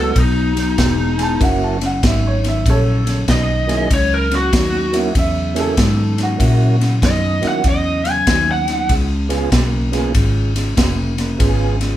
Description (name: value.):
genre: electric blues shuffle.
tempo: 96 BPM.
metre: 4/4.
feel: swing 65% on 8ths.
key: F# mixolydian.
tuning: A4 = 440 Hz.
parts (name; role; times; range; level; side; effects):
lead guitar through a small cranked amp; melody; 0.0-8.9 s; D#4 to G#5; -19 LUFS; equal; overdrive.
tonewheel organ; accompaniment; 0.0-11.8 s; F#3 to G#4; -22 LUFS; right 5 dB; slow rotary speaker, overdrive.
electric guitar through a small old amp; riff; 0.0-12.0 s; F#2 to A#3; -22 LUFS; left 1 dB; none.
vintage muted fingered electric bass; bass; 0.0-12.0 s; E1 to A#2; -18 LUFS; equal; none.
natural country drum kit; drums; 0.2-11.9 s; kick drum, ride cymbal, snare drum; -19 LUFS; equal; none.
warm upright piano; second line; 1.2-6.9 s; F#4 to A5; -23 LUFS; right 2 dB; none.
room: moderate small room reverb, RT60 0.6 s.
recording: band playing live in one room.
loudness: -14 LUFS.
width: side -12 dB against mid.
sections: 0.0-12.0 A section.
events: none.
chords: 0.0 B7; 1.4 F#7; 8.9 C#7.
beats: 0.16 0.79 | 1.41 2.04 2.66 3.28 | 3.91 4.53 5.16 5.78 | 6.41 7.03 7.65 8.28 | 8.90 9.53 10.15 10.78 | 11.40.